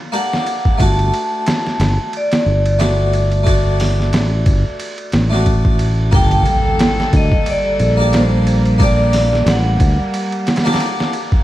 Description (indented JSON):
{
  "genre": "trip hop",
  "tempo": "90 BPM",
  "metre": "4/4",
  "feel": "swing 56% on 16ths",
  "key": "G harmonic minor",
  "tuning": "A4 = 439 Hz",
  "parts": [
    { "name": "harpsichord", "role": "accompaniment", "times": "0.0-11.4 s", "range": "D3 to A4", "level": "-23 LUFS", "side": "left 1 dB", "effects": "tremolo, vintage 12-bit sampler grit, tape echo" },
    { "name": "trip hop sampler-style drum kit", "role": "drums", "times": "0.1-11.4 s", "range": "hi-hat, kick drum, ride cymbal, snare drum", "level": "-18 LUFS", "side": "equal", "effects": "overdrive, studio reverb" },
    { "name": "vibraphone with medium hard mallets", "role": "melody", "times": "0.2-11.1 s", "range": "C5 to A5", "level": "-20 LUFS", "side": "equal", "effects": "tape echo" },
    { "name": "fingered electric bass", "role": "bass", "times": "0.8-10.0 s", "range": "G1 to D2", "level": "-15 LUFS", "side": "equal", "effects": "none" },
    { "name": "rich chamber string section", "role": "sustained chords", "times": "6.1-11.4 s", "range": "G3 to A4", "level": "-22 LUFS", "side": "equal", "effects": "none" },
    { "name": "impact", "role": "sound effects", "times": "6.1-8.8 s", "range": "none", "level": "-22 LUFS", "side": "equal", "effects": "none" }
  ],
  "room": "small room ambience",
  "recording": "vinyl crackle",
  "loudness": "-13 LUFS",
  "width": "side -15 dB against mid",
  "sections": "0.0-6.1 A section; 6.1-11.4 B section",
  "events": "impact 6.1-8.8",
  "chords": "0.0 Gmadd9; 0.8 D/G; 6.1 Gmadd9"
}